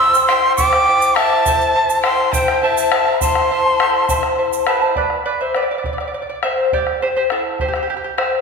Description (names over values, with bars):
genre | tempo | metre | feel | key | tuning
andean folk, Andean ensemble | 68 BPM (dotted quarters) | 6/8 | straight | A minor pentatonic | A4 = 440 Hz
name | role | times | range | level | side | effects
breathy bright large quena | melody | 0.0-4.7 s | G5 to E6 | -16 LUFS | equal | none
breathy mellow pan flute | second line | 0.0-4.7 s | C5 to C6 | -22 LUFS | left 3 dB | none
charango | accompaniment | 0.0-8.4 s | E4 to A5 | -18 LUFS | equal | none
egg shaker | percussion | 0.1-4.7 s | none | -28 LUFS | right 8 dB | none
bombo | percussion | 0.3-8.4 s | none | -22 LUFS | left 2 dB | none
room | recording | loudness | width
wet scoring stage reverb, RT60 1.6 s | recorded in a church or concert hall | -14 LUFS | side -5 dB against mid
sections
0.0-5.0 A section; 5.0-8.4 B section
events
charango solo 5.0-8.4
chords
0.0 C; 1.5 Am; 5.0 Bmadd11; 6.7 C